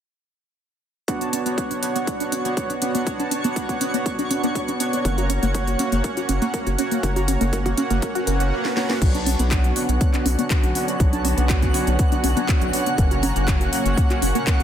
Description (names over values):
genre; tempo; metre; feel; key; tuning
progressive house; 121 BPM; 4/4; straight; B minor; A4 = 440 Hz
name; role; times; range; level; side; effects
tight sequenced synth; arpeggios; 1.1-14.6 s; A#3 to F#5; -27 LUFS; equal; chorus, sidechain pumping, dub echo
soft supersaw; stabs; 1.1-14.6 s; A#3 to A#5; -24 LUFS; right 2 dB; sidechain pumping, low-pass filter, dub echo
electronic kick drum; drums; 1.1-14.6 s; none; -22 LUFS; equal; high-pass filter on kick, studio reverb
house drum kit; drums; 1.1-14.6 s; crash cymbal, handclaps, hi-hat, snare drum; -28 LUFS; equal; studio reverb
twinkling granular texture; texture; 1.4-14.6 s; C#5 to F#6; -35 LUFS; left 1 dB; built-in reverb, sidechain pumping
round analog bass; bass; 5.0-14.6 s; F#1 to B1; -22 LUFS; equal; sidechain pumping
swell; sound effects; 8.2-9.0 s; none; -34 LUFS; right 3 dB; none
dark studio string section; sustained chords; 9.0-14.6 s; A#2 to F#4; -29 LUFS; left 2 dB; sidechain pumping, low-pass filter
room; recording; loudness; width
light reverb, digital ambience; dense, heavily limited modern master; -19 LUFS; side -9 dB against mid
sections
1.1-9.0 A section; 9.0-14.6 B section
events
filter sweep on synth arpeggio sound 1.1-9.0; filter sweep on supersaw synth 1.1-9.0, 9.0-14.6; swell 8.2-9.0; drum fill 8.6-9.0; filter sweep on string section 9.0-14.6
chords
1.1 Bmadd9; 5.0 F#; 9.0 Bmadd9; 13.0 F#